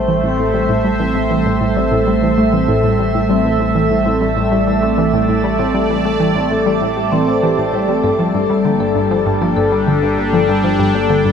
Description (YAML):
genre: ambient, sequencer-driven space music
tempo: 98 BPM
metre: 4/4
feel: straight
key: A minor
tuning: A4 = 438 Hz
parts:
  - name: sweeping resonant pad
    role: sustained chords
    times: 0.0-11.3 s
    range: G3 to G5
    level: -16 LUFS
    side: right 1 dB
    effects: chorus
  - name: analog pluck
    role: riff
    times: 0.0-11.3 s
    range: G2 to A3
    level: -19 LUFS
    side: left 1 dB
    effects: chorus, ping-pong delay
  - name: analog drone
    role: bass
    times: 0.0-11.3 s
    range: G1 to A1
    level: -24 LUFS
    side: equal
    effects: chorus
  - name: vibraphone with soft mallets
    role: arpeggios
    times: 0.1-11.3 s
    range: G3 to C5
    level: -19 LUFS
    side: left 2 dB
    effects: auto-pan, low-pass filter, ping-pong delay
room: wet shimmer reverb, RT60 7.5 s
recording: none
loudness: -13 LUFS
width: side -7 dB against mid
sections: 0.0-11.3 A section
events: filter sweep on vibraphone 0.0-11.3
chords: 0.0 Am7; 8.0 Gmadd9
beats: 0.08 | 0.69 1.30 1.92 2.53 | 3.14 3.75 4.37 4.98 | 5.59 6.20 6.81 7.43 | 8.04 8.65 9.26 9.88 | 10.49 11.10